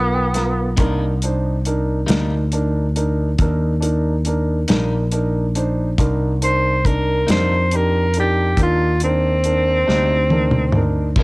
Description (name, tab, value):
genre	slow blues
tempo	46 BPM (dotted quarters)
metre	12/8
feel	straight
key	C minor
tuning	A4 = 440 Hz
part	warm tenor saxophone	melody	0.0-11.1 s	B3 to C5	-19 LUFS	equal	none
part	warm upright piano	accompaniment	0.0-11.2 s	B3 to A#5	-23 LUFS	right 1 dB	none
part	picked electric bass	bass	0.0-11.2 s	Bb1 to F2	-19 LUFS	equal	tube saturation
part	warm soul drum kit	drums	0.3-11.2 s	crash cymbal, hi-hat, kick drum, snare drum, toms	-20 LUFS	equal	none
part	clean electric guitar	accompaniment	0.8-11.2 s	C3 to Eb4	-27 LUFS	left 3 dB	harmonic tremolo
room	studio ambience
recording	home recording on cassette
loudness	-16 LUFS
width	side -24 dB against mid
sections	0.0-11.2 A section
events	upright piano fill 0.0-0.8; drum fill 9.9-11.2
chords	0.0 G7#9; 0.8 Cm7